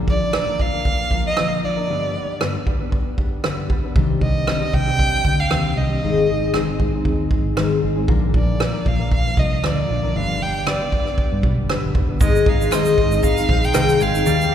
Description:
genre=acoustic pop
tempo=116 BPM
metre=4/4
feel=swing 55% on 16ths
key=unclear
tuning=A4 = 439 Hz
part: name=fingerpicked steel-string acoustic guitar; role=accompaniment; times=0.0-14.5 s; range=G2 to B4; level=-22 LUFS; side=left 3 dB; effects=none
part: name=rich violin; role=melody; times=0.1-14.5 s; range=D5 to G5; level=-24 LUFS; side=right 2 dB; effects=none
part: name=natural country drum kit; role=drums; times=0.1-14.5 s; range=kick drum, rim click, shaker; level=-21 LUFS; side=right 1 dB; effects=none
part: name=vintage muted fingered electric bass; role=bass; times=4.0-14.5 s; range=F1 to G2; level=-23 LUFS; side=right 1 dB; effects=none
part: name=mandolin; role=arpeggios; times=12.2-14.5 s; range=G3 to Ab5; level=-28 LUFS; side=right 4 dB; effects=none
part: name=group handclap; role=percussion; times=12.7-13.9 s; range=none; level=-40 LUFS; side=left 3 dB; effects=none
room=wet church reverb, RT60 3.1 s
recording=recorded in a church or concert hall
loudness=-17 LUFS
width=side -9 dB against mid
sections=0.0-12.2 A section; 12.2-14.5 B section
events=none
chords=0.0 Bb; 1.9 G; 4.0 Cmadd9; 6.0 Ab; 8.1 Bb; 10.1 G; 12.2 Ab

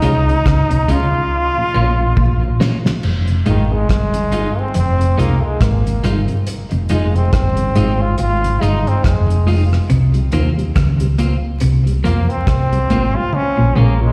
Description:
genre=roots reggae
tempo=70 BPM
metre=4/4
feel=swing 58% on 16ths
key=F minor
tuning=A4 = 441 Hz
part: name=brilliant trombone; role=melody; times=0.0-14.1 s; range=Eb3 to F4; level=-23 LUFS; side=equal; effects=tape echo, slapback echo
part: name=clean electric guitar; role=accompaniment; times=0.0-13.9 s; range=Ab3 to F4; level=-27 LUFS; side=equal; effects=tube saturation, tape echo, slapback echo
part: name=mellow tonewheel organ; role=accompaniment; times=0.0-14.1 s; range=F2 to Ab4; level=-29 LUFS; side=equal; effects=chorus vibrato, slow rotary speaker, tape echo, slapback echo
part: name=clean electric guitar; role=riff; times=0.0-14.0 s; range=F2 to F3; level=-24 LUFS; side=equal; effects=none
part: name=hollow-body short-scale fingered electric bass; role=bass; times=0.0-14.1 s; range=F1 to F2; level=-18 LUFS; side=equal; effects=none
part: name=cloth-damped thuddy drum kit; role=drums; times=0.0-14.0 s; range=crash cymbal, hi-hat, kick drum, rim click, snare drum, toms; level=-22 LUFS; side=equal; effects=none
room=light reverb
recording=live gig heard through the venue's PA, recital hall reverb, vinyl crackle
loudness=-16 LUFS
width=mono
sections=0.0-3.0 A section; 3.0-14.1 B section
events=drum fill 1.3-3.0, 13.3-14.1; trombone solo 3.0-14.1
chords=0.0 Db; 1.3 Bbm; 3.0 Fm7; 9.9 C7sus4; 13.3 Bbm7

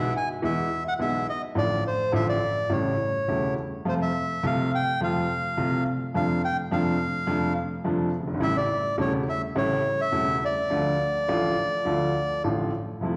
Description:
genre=tango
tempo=105 BPM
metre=4/4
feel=rubato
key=D minor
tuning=A4 = 436 Hz
part: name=bandoneon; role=melody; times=0.0-12.4 s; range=C5 to G#5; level=-29 LUFS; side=equal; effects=none
part: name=clear upright piano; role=accompaniment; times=0.0-13.2 s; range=E1 to G#4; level=-28 LUFS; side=equal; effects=none
room=wet recital hall reverb, RT60 1.4 s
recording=heard from further back in the room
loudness=-26 LUFS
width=mono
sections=0.0-13.0 A section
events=none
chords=0.0 E; 1.6 Dm/A; 2.7 A7; 3.9 F; 6.2 Dm7/F; 8.4 A7; 10.7 Dm

